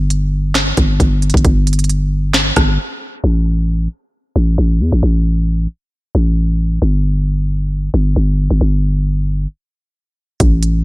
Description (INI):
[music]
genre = hip hop, trap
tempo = 134 BPM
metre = 4/4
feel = half-time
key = unclear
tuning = A4 = 440 Hz
[part]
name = growling 808-style bass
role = bass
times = 0.0-10.8 s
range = G1 to E2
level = -13 LUFS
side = equal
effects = none
[part]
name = trap drum kit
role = drums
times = 0.1-2.7, 10.4-10.7 s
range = finger snaps, hi-hat, kick drum, rim click, snare drum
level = -14 LUFS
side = equal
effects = none
[sound]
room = digital ambience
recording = low-pass filter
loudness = -13 LUFS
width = side -19 dB against mid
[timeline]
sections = 0.0-3.2 A section; 3.2-10.4 B section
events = break 2.8-3.2; filter sweep 3.2-10.4; stop 9.5-10.4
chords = none